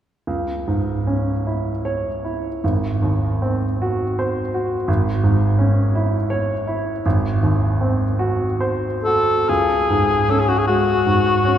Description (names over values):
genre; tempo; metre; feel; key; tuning
classical, romantic duo for cor anglais and grand piano; 43-58 BPM (dotted quarters); 6/8; rubato; C# minor; A4 = 438 Hz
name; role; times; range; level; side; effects
clear baby grand piano; accompaniment; 0.3-11.6 s; G#1 to C#5; -18 LUFS; right 1 dB; none
warm cor anglais; melody; 9.0-11.6 s; F#4 to A4; -16 LUFS; left 3 dB; none
room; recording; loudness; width
wet church reverb, RT60 4.0 s; recorded in a church or concert hall; -17 LUFS; side -10 dB against mid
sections
0.3-9.5 A section; 9.5-11.6 B section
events
none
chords
0.3 C#m; 2.6 G#7; 4.9 C#m/G#; 7.0 G#7; 9.5 C#5